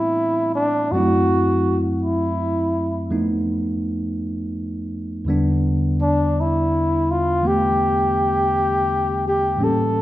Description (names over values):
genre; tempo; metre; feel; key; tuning
jazz ballad; 55 BPM; 4/4; swing 66% on 8ths; unclear; A4 = 440 Hz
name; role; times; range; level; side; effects
mellow flugelhorn; melody; 0.0-10.0 s; D4 to A4; -19 LUFS; equal; none
bright tine electric piano; accompaniment; 0.0-10.0 s; E2 to E4; -21 LUFS; equal; none
room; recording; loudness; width
wet recital hall reverb, RT60 1.6 s; recorded in a church or concert hall, nothing above 10.6 kHz; -18 LUFS; side -15 dB against mid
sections
0.0-10.0 A section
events
none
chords
0.0 Am11; 0.9 F#m7b5; 3.1 F7#11; 5.3 Em7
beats
| 0.93 2.02 3.10 4.19 | 5.27 6.35 7.43 8.52 | 9.60